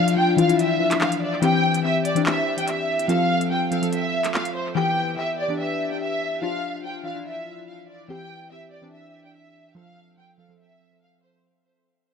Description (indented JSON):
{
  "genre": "hip hop, drill",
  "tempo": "144 BPM",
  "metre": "4/4",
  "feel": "half-time",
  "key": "unclear",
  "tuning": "A4 = 440 Hz",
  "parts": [
    { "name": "warm studio violin section", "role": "melody", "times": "0.0-11.4 s", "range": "C5 to G5", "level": "-24 LUFS", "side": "right 1 dB", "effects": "low-pass filter, tape echo" },
    { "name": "glassy digital keys", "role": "accompaniment", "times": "0.0-11.4 s", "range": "E3 to A4", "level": "-23 LUFS", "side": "left 3 dB", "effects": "chorus, phaser, low-pass filter, tape echo" },
    { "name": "downlifter", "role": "sound effects", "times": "0.0-1.4 s", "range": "none", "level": "-45 LUFS", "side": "equal", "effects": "none" },
    { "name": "drill drum kit", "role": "drums", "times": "0.1-4.5 s", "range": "handclaps, hi-hat", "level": "-29 LUFS", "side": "equal", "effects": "vintage 12-bit sampler grit, tape echo" }
  ],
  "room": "moderate echo chamber reverb, RT60 1.5 s",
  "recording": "echo-heavy mix",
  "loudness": "-20 LUFS",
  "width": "side -6 dB against mid",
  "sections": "0.0-11.4 A section",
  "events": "break 0.0-4.8; fade-out 0.0-11.4",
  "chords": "0.0 Dmadd9; 1.4 C; 3.1 F; 4.8 Em; 6.4 Dmadd9; 8.1 C; 9.8 F"
}